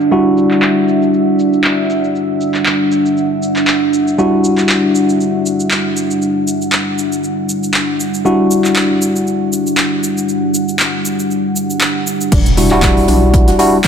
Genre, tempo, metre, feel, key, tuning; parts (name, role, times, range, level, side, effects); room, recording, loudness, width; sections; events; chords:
deep house; 118 BPM; 4/4; swing 55% on 16ths; E minor; A4 = 439 Hz
bright tine electric piano; stabs; 0.0-13.8 s; G3 to F#4; -15 LUFS; left 1 dB; sidechain pumping, ping-pong delay
deep house drum kit; drums; 0.0-13.9 s; crash cymbal, handclaps, hi-hat, shaker; -18 LUFS; equal; low-pass filter on cymbals, low-pass filter on perc, low-pass filter on snare, low-pass filter on hats
deep dark ambient pad; texture; 0.0-13.9 s; G3 to F#5; -16 LUFS; right 1 dB; chorus, built-in reverb, sidechain pumping
soft round pluck; arpeggios; 12.3-13.9 s; D4 to F#4; -24 LUFS; left 1 dB; chorus, cassette tape, sidechain pumping, ping-pong delay
rubbery square bass; bass; 12.3-13.5 s; E1 to B1; -15 LUFS; equal; sidechain pumping
electronic kick drum; drums; 12.3-13.9 s; -12 LUFS; equal
tight funk drum kit; drums; 12.3-13.9 s; hi-hat, snare drum; -28 LUFS; right 3 dB
impact; sound effects; 12.4-13.9 s; -21 LUFS; equal
moderate lush hall reverb, RT60 2.0 s; -11 LUFS; side -7 dB against mid
0.0-12.3 A section; 12.3-13.9 B section
drop 12.3-13.9; impact 12.3-13.9
0.0 Em9